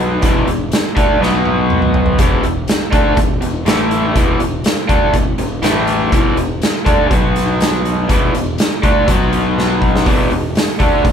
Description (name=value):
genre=blues rock power trio and southern rock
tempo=122 BPM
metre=4/4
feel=straight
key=unclear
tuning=A4 = 440 Hz
part: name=raw garage guitar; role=riff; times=0.0-11.1 s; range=E2 to D4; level=-16 LUFS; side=equal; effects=overdrive
part: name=fuzz fingered electric bass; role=bass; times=0.0-11.1 s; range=E1 to D2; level=-21 LUFS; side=equal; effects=overdrive
part: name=oversized low-tuned drum kit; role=drums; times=0.2-11.1 s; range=hi-hat, kick drum, snare drum, toms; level=-16 LUFS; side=equal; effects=none
room=moderate studio reverb, RT60 0.7 s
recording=band playing live in one room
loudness=-12 LUFS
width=side -8 dB against mid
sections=0.0-10.1 A section; 10.1-11.1 A section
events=drum fill 1.2-2.2, 9.6-10.1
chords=0.2 E5; 1.2 B5; 2.2 E5; 3.7 A5; 4.2 E5; 5.6 A5; 6.1 E5; 7.1 B5; 8.1 E5; 9.1 B5; 10.1 E5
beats=| 0.23 0.72 1.21 1.71 | 2.20 2.69 3.18 3.67 | 4.16 4.65 5.14 5.63 | 6.12 6.62 7.11 7.60 | 8.09 8.58 9.07 9.57 | 10.06 10.55 11.04